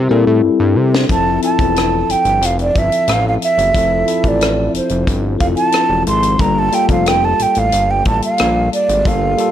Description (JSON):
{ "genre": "lush 1970s-style soul", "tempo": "90 BPM", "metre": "4/4", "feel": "straight", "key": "F major", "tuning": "A4 = 440 Hz", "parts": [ { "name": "bell-like tine electric piano", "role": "accompaniment", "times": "0.0-9.5 s", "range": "F3 to Bb4", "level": "-18 LUFS", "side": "left 5 dB", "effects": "phaser" }, { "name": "fat analog bass", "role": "bass", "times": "0.0-9.4 s", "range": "E1 to C3", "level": "-18 LUFS", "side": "equal", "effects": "none" }, { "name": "tight funk drum kit", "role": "drums", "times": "0.9-9.5 s", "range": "hi-hat, kick drum, rim click, snare drum", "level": "-20 LUFS", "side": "left 1 dB", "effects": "none" }, { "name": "breathy mellow concert flute", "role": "melody", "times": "1.1-9.5 s", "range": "C5 to C6", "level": "-16 LUFS", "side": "right 3 dB", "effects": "none" } ], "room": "light reverb, small room ambience", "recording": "none", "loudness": "-12 LUFS", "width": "side -10 dB against mid", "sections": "0.0-1.1 A section; 1.1-9.5 B section", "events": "drum fill 0.0-1.1; flute solo 1.1-9.5", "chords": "0.0 C7; 1.1 Fmaj7; 6.4 Gm9" }